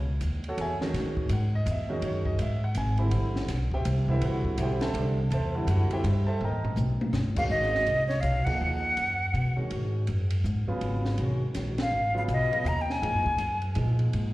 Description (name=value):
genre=modal jazz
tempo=164 BPM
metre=3/4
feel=swing 63% on 8ths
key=G# dorian from 7.5 s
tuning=A4 = 444 Hz
part: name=upright bass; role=bass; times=0.0-14.3 s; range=G1 to B2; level=-27 LUFS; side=equal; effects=none
part: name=compact cocktail drum kit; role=drums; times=0.2-14.2 s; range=crash cymbal, hi-hat, kick drum, ride cymbal, snare drum, toms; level=-36 LUFS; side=equal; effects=none
part: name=warm concert grand piano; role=accompaniment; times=0.5-14.3 s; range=C#3 to B5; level=-32 LUFS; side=right 1 dB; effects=slapback echo
part: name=breathy bright jazz flute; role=melody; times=7.4-9.6, 11.8-13.6 s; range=C#5 to A#5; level=-27 LUFS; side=equal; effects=slapback echo
room=light reverb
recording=live gig heard through the venue's PA, recital hall reverb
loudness=-25 LUFS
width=side -18 dB against mid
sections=0.0-7.5 A section; 7.5-14.3 B section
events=drum fill 6.4-7.1; band accent 8.4, 11.7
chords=0.0 F#m9; 3.1 Am9; 6.4 D#7b13; 7.5 G#m9